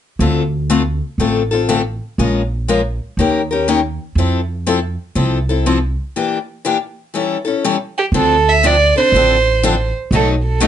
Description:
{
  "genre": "acoustic string swing (jazz manouche)",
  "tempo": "121 BPM",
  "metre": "4/4",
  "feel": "swing 64% on 8ths",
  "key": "D minor",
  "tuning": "A4 = 440 Hz",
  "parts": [
    { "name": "picked steel-string acoustic guitar", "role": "accompaniment", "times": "0.2-10.7 s", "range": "B2 to Bb4", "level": "-16 LUFS", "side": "left 5 dB", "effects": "none" },
    { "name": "upright bass", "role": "bass", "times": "0.2-10.7 s", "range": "A1 to F2", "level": "-18 LUFS", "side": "right 1 dB", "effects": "none" },
    { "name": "warm violin", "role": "melody", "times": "8.0-10.7 s", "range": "G4 to E5", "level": "-13 LUFS", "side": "right 4 dB", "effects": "none" }
  ],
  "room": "light reverb",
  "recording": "nothing above 10.9 kHz",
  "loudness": "-14 LUFS",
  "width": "side -10 dB against mid",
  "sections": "0.2-8.1 A section; 8.1-10.7 B section",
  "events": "break 6.2-8.1",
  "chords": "0.2 Dm7; 2.2 Bbm7; 3.2 Eb7; 4.2 Fmaj7; 6.2 Em7b5; 7.1 A7; 8.1 Dm7; 10.1 B7"
}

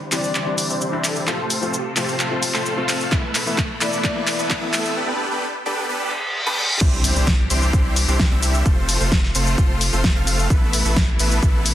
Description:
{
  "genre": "EDM, festival progressive house",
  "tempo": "130 BPM",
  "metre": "4/4",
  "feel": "straight",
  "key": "C major",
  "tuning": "A4 = 440 Hz",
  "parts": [
    { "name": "clear studio string section", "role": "sustained chords", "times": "0.0-11.7 s", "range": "B2 to C5", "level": "-30 LUFS", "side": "equal", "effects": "vintage 12-bit sampler grit, sidechain pumping, low-pass filter" },
    { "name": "riser, reverse cymbal and impact", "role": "sound effects", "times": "1.9-8.7 s", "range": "none", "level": "-27 LUFS", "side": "equal", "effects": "none" },
    { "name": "breathy flute-like synth lead", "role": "melody", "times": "0.1-4.8 s", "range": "G4 to D5", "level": "-30 LUFS", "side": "left 1 dB", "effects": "ensemble chorus, digital delay" },
    { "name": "felt-muted upright piano", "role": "accompaniment", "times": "0.1-4.9 s", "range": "E3 to F4", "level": "-28 LUFS", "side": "left 4 dB", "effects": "sidechain pumping, digital delay" },
    { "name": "dense compressed supersaw", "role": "riff", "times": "0.1-11.7 s", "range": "A3 to F5", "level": "-24 LUFS", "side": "equal", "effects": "sidechain pumping, low-pass filter, digital delay" },
    { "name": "big-room dance drum kit", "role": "drums", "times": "0.1-11.7 s", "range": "crash cymbal, handclaps, hi-hat, shaker, snare drum", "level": "-22 LUFS", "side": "equal", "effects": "soft clipping on snare, high-pass filter on snare, small room ambience, high-pass filter on perc, high-pass filter on hats, high-pass filter on cymbals" },
    { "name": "electronic kick drum", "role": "drums", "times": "3.1-11.5 s", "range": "none", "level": "-19 LUFS", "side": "equal", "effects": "small room ambience" },
    { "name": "saturated sub bass", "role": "bass", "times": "6.8-11.7 s", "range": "F1 to C2", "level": "-21 LUFS", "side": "equal", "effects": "sidechain pumping" }
  ],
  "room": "light reverb",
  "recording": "dense, heavily limited modern master, high-pass filter",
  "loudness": "-17 LUFS",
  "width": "side -12 dB against mid",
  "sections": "0.0-6.8 A section; 6.8-11.7 B section",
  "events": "build-up 0.0-6.8; drum fill 0.0-5.0; filter sweep on supersaw synth 0.0-6.8; filter sweep on string section 0.0-6.8; reverse cymbal 6.1-6.8; drop 6.8-11.7; impact 6.8-8.7",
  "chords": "0.0 Cadd9; 1.3 F; 3.1 Asus2; 5.0 Gadd9; 6.8 Cadd9; 8.7 F; 10.5 Asus2"
}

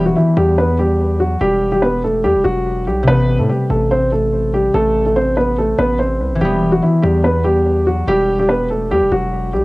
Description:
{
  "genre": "hip hop, drill",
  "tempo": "144 BPM",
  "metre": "4/4",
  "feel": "half-time",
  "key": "E minor",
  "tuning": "A4 = 440 Hz",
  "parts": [
    { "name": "dark concert grand piano", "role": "melody", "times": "0.0-9.6 s", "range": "E3 to C5", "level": "-15 LUFS", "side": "equal", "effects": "none" },
    { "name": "concert harp", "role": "accompaniment", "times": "0.0-9.6 s", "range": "C3 to B3", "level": "-20 LUFS", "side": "left 1 dB", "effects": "cassette tape, plate reverb" },
    { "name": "distorted 808-style bass", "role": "bass", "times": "0.0-9.6 s", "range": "E1 to A2", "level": "-20 LUFS", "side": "equal", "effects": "distortion" }
  ],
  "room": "moderate booth ambience, RT60 0.2 s",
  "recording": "home recording on cassette",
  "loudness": "-13 LUFS",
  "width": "side -22 dB against mid",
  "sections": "0.0-9.6 A section",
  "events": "none",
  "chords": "0.0 Em; 3.1 Amadd9; 6.4 Em"
}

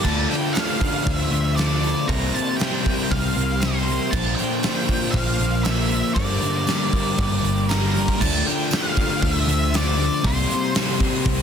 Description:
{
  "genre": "rock, shoegaze and dream pop",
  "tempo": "118 BPM",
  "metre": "4/4",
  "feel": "straight",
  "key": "D minor",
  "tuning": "A4 = 438 Hz",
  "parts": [
    { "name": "octave-fuzz lead guitar", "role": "melody", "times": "0.0-10.7 s", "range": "Bb4 to Bb5", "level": "-27 LUFS", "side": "equal", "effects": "distortion, tape echo" },
    { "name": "icy glass pad", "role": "sustained chords", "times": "0.0-11.4 s", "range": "A4 to D6", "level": "-34 LUFS", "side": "left 1 dB", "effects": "chorus, built-in reverb" },
    { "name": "overdriven electric guitar", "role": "riff", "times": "0.0-8.2 s", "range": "G2 to Bb4", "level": "-30 LUFS", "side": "right 11 dB", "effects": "reverse reverb" },
    { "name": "overdriven semi-hollow guitar", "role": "riff", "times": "0.0-11.4 s", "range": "G2 to E4", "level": "-28 LUFS", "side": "right 1 dB", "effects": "none" },
    { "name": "thick fuzz guitar", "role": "riff", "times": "0.0-11.4 s", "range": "G2 to D4", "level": "-26 LUFS", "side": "left 10 dB", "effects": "distortion, lush chorus" },
    { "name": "vintage muted picked electric bass", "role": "bass", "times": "0.0-11.4 s", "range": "G1 to D2", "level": "-23 LUFS", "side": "equal", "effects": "none" },
    { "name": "gated 80s drum kit", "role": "drums", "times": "0.0-11.4 s", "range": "crash cymbal, hi-hat, kick drum, snare drum", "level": "-24 LUFS", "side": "right 1 dB", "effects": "none" },
    { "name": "tambourine", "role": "percussion", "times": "0.5-10.9 s", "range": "none", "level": "-36 LUFS", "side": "right 12 dB", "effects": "none" }
  ],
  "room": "light reverb, small room ambience",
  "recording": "dense, heavily limited modern master",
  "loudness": "-19 LUFS",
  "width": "side -7 dB against mid",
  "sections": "0.0-8.2 A section; 8.2-11.4 A section",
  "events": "none",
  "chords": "0.1 Dm7; 2.1 C7sus4; 4.1 Bbmaj7; 6.2 Gm; 8.2 Dm7; 10.2 C7(no3)"
}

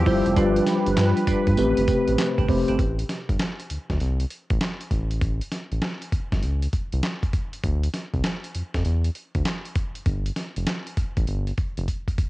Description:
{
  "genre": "R&B, new jack swing",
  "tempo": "99 BPM",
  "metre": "4/4",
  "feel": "swing 65% on 16ths",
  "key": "A minor",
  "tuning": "A4 = 440 Hz",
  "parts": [
    { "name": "mellow tine electric piano", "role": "accompaniment", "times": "0.0-2.8 s", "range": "G3 to C5", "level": "-22 LUFS", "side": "equal", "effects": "medium stereo tremolo, cassette tape" },
    { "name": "sweeping resonant pad", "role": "sustained chords", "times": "0.0-2.8 s", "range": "C3 to E5", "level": "-28 LUFS", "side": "equal", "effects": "chorus, cassette tape" },
    { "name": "round analog bass", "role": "bass", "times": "0.0-11.9 s", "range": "F1 to G2", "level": "-24 LUFS", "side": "equal", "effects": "none" },
    { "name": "percussive tonewheel organ", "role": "stabs", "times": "0.1-2.8 s", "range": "C4 to C5", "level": "-35 LUFS", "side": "right 7 dB", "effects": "chorus vibrato, slow rotary speaker, cassette tape, analog delay" },
    { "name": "dusty soul sampler-style drum kit", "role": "drums", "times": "0.1-12.3 s", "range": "handclaps, hi-hat, kick drum, snare drum, tambourine", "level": "-26 LUFS", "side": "equal", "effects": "cassette tape" }
  ],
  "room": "light reverb, digital ambience",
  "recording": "home recording on cassette",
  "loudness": "-22 LUFS",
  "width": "side -18 dB against mid",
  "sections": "0.0-2.8 A section; 2.8-12.3 B section",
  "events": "drum fill 11.9-12.3",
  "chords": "0.4 G7; 1.6 Am9; 2.8 Am; 4.9 A7; 7.6 Dmadd9; 10.1 Fadd9"
}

